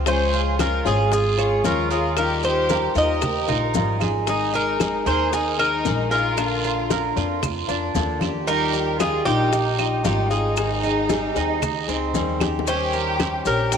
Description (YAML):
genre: latin, Cuban son and guajira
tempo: 114 BPM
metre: 4/4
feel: straight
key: Ab major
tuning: A4 = 437 Hz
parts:
  - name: flamenco guitar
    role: accompaniment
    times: 0.0-13.8 s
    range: Db3 to Ab4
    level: -27 LUFS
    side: left 10 dB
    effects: none
  - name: Cuban tres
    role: arpeggios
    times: 0.0-13.8 s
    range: C4 to Eb5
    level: -27 LUFS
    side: right 11 dB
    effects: tape echo
  - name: upright bass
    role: bass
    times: 0.0-13.8 s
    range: Ab1 to F2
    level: -26 LUFS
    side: equal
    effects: none
  - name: Cuban tres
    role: melody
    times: 0.1-13.8 s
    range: G4 to Eb5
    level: -24 LUFS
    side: equal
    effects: tape echo
  - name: clear chamber violin section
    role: second line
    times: 0.1-13.8 s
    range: Eb4 to Bb4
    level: -29 LUFS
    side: equal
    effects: none
  - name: bongos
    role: percussion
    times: 0.1-13.8 s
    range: none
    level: -29 LUFS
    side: left 13 dB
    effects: none
  - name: congas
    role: percussion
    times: 0.1-13.8 s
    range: none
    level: -30 LUFS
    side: equal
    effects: none
  - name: guiro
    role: percussion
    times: 0.1-13.8 s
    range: none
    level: -34 LUFS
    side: right 14 dB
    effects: none
  - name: maracas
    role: percussion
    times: 0.1-13.8 s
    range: none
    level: -35 LUFS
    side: left 12 dB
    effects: none
  - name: claves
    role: percussion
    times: 0.6-13.5 s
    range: none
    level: -34 LUFS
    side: right 12 dB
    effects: none
room: moderate plate reverb, RT60 3.4 s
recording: 1960s-style stereo with parts hard left and right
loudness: -19 LUFS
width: side -7 dB against mid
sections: 0.0-12.7 A section; 12.7-13.8 B section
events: drum fill 12.4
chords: 0.1 Db; 2.2 Ebadd9; 4.3 Absus2; 6.4 Bb; 8.5 Ebadd9; 10.6 Abmaj7; 12.7 Eb7